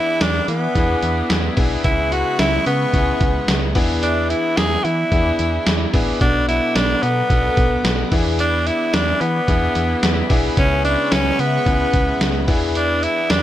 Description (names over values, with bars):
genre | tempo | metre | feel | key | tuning
1980s-style pop | 110 BPM | 4/4 | straight | unclear | A4 = 438 Hz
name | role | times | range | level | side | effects
raspy tenor saxophone | melody | 0.0-13.4 s | B3 to G#4 | -20 LUFS | equal | plate reverb
clear concert grand piano | accompaniment | 0.0-13.4 s | B2 to A4 | -25 LUFS | left 4 dB | plate reverb
cranked stack guitar | accompaniment | 0.0-13.4 s | B2 to E4 | -30 LUFS | right 3 dB | overdrive, analog chorus, plate reverb
phased analog pad | sustained chords | 0.0-13.4 s | G#4 to D6 | -29 LUFS | left 1 dB | phaser, chorus, plate reverb
solid FM bass | bass | 0.2-13.4 s | A1 to E3 | -22 LUFS | equal | none
trip hop sampler-style drum kit | drums | 0.2-13.4 s | hi-hat, kick drum, snare drum, tambourine | -20 LUFS | equal | gated reverb
room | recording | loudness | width
moderate booth ambience, RT60 0.3 s | none | -15 LUFS | side -12 dB against mid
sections
0.0-13.4 A section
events
none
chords
0.0 E7; 1.8 C#m7; 3.8 E7; 6.2 Bm7; 8.1 E7; 10.6 C#m7; 12.5 E7